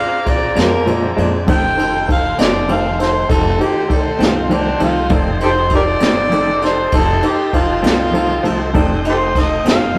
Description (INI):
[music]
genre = slow blues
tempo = 66 BPM (dotted quarters)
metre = 12/8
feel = straight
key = F mixolydian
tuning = A4 = 440 Hz
[part]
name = mellow harmonica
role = melody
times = 0.0-10.0 s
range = D4 to G5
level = -20 LUFS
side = equal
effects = overdrive
[part]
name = warm upright piano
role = accompaniment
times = 0.0-10.0 s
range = Eb4 to F5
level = -24 LUFS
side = equal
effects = none
[part]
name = tonewheel organ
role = sustained chords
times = 0.0-10.0 s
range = Eb3 to G5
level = -29 LUFS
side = equal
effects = slow rotary speaker
[part]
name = warm horn section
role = sustained chords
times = 0.0-10.0 s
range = C5 to Bb5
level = -31 LUFS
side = equal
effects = none
[part]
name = upright bass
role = bass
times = 0.3-10.0 s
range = F1 to F2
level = -25 LUFS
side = equal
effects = none
[part]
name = jazz brush drum kit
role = drums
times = 0.3-9.8 s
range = kick drum, ride cymbal, snare drum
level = -21 LUFS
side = equal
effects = none
[part]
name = clean electric guitar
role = accompaniment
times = 0.6-10.0 s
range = F2 to D4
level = -23 LUFS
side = equal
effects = tremolo
[sound]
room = moderate stone room reverb, RT60 1.1 s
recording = rough rehearsal-room recording, tube saturation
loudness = -15 LUFS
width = mono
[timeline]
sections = 0.0-10.0 A section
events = harmonica solo 0.0-10.0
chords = 0.0 Bb7; 1.5 F7